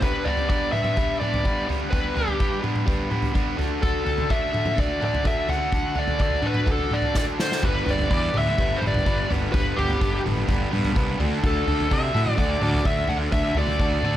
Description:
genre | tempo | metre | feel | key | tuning
indie rock | 126 BPM | 4/4 | straight | G major | A4 = 440 Hz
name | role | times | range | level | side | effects
dark smooth lead guitar | melody | 0.0-14.2 s | G4 to F#5 | -26 LUFS | left 1 dB | overdrive, analog delay
crunchy overdriven guitar | riff | 0.0-14.2 s | D3 to B4 | -27 LUFS | equal | none
unplugged drum kit | drums | 0.0-14.2 s | kick drum, snare drum, toms | -24 LUFS | equal | none
fuzz picked electric bass | bass | 7.6-14.2 s | G1 to C3 | -27 LUFS | equal | overdrive
room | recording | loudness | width
light reverb | none | -20 LUFS | side -12 dB against mid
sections
0.0-14.2 A section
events
drum fill 7.2-7.6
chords
0.0 G; 3.6 D; 7.6 G; 11.2 D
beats
| 0.03 0.50 0.98 1.45 | 1.93 2.40 2.88 3.35 | 3.83 4.31 4.78 5.26 | 5.73 6.21 6.68 7.16 | 7.63 8.11 8.59 9.06 | 9.54 10.01 10.48 10.96 | 11.43 11.91 12.38 12.86 | 13.33 13.80

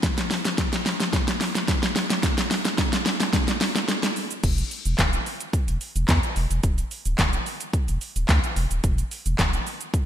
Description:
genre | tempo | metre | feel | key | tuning
dance-pop | 109 BPM | 4/4 | straight | unclear | A4 = 440 Hz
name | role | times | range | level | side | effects
pop drum kit | drums | 0.0-10.1 s | crash cymbal, handclaps, hi-hat, kick drum, shaker, snare drum | -22 LUFS | equal | gated reverb
warm sub bass | bass | 4.4-9.6 s | D1 to E2 | -24 LUFS | equal | sidechain pumping
room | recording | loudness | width
light reverb | bright 1980s-style digital production | -22 LUFS | side -10 dB against mid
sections
0.0-4.4 A section; 4.4-10.1 B section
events
build-up 0.0-4.4; drum fill 0.0-4.4; drop 4.4-10.1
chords
none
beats
| 0.03 0.58 1.13 1.68 | 2.23 2.78 3.33 3.88 | 4.43 4.99 5.54 6.09 | 6.64 7.19 7.74 8.29 | 8.84 9.39 9.94

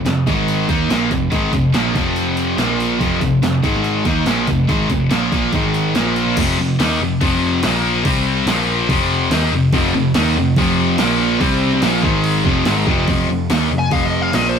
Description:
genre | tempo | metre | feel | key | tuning
hard rock | 143 BPM | 4/4 | straight | unclear | A4 = 445 Hz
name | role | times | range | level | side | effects
cranked stack guitar | riff | 0.0-14.6 s | F2 to Eb4 | -21 LUFS | left 8 dB | overdrive
picked electric bass | bass | 0.0-14.6 s | F1 to Eb2 | -22 LUFS | equal | none
high-gain distorted guitar | riff | 0.1-13.1 s | F2 to Eb4 | -19 LUFS | equal | distortion
sludgy distorted guitar | riff | 0.1-6.4, 9.7-14.6 s | F2 to Eb4 | -21 LUFS | right 6 dB | overdrive
deep house drum kit | drums | 0.1-14.4 s | crash cymbal, hi-hat, kick drum, snare drum | -22 LUFS | equal | none
smooth overdriven lead guitar | melody | 13.8-14.6 s | C5 to Ab5 | -20 LUFS | left 3 dB | none
room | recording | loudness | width
light reverb | rough rehearsal-room recording, warm saturation | -14 LUFS | side -7 dB against mid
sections
0.0-6.4 A section; 6.4-13.1 B section; 13.1-14.6 C section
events
lead electric guitar solo 13.1-14.6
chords
0.3 Ab5; 0.7 F5; 2.6 Bb5; 3.0 F5; 3.6 Ab5; 4.1 F5; 5.5 Ab5; 6.0 Bb5; 6.4 F5; 7.6 Bb5; 8.1 C5; 8.5 Bb5; 8.9 F5; 11.0 Bb5; 11.4 C5; 11.8 Bb5; 12.0 Ab5; 12.5 F5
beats
0.06 0.48 0.90 | 1.32 1.75 2.17 2.59 | 3.01 3.43 3.85 4.27 | 4.69 5.11 5.53 5.95 | 6.37 6.79 7.21 7.63 | 8.05 8.47 8.89 9.31 | 9.73 10.15 10.57 10.99 | 11.41 11.83 12.25 12.67 | 13.08 13.50 13.92 14.34

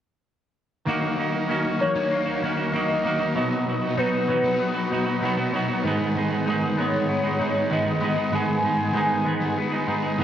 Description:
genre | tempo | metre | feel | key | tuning
rock | 97 BPM | 4/4 | straight | unclear | A4 = 445 Hz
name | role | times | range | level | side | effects
analog string pad | sustained chords | 0.9-10.2 s | F#3 to C#5 | -33 LUFS | right 1 dB | ensemble chorus
twangy electric guitar | arpeggios | 0.9-10.2 s | F#3 to D#4 | -30 LUFS | left 5 dB | ensemble chorus, tape echo
cranked stack guitar | riff | 0.9-10.2 s | G#2 to G#4 | -25 LUFS | right 5 dB | overdrive, reverse reverb
thick fuzz guitar | riff | 0.9-10.2 s | G#2 to D#4 | -29 LUFS | left 6 dB | distortion, lush chorus
warm velvety synth lead | melody | 1.8-10.2 s | B4 to G#5 | -26 LUFS | left 1 dB | chorus, tape echo
room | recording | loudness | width
moderate spring reverb, RT60 1.3 s, digital ambience | home recording on cassette | -21 LUFS | side -10 dB against mid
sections
0.9-10.2 A section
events
none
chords
0.9 D#m7; 3.4 B; 5.8 G#m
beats
| 0.87 1.49 2.11 2.73 | 3.36 3.98 4.60 5.22 | 5.84 6.46 7.08 7.71 | 8.33 8.95 9.57 10.19

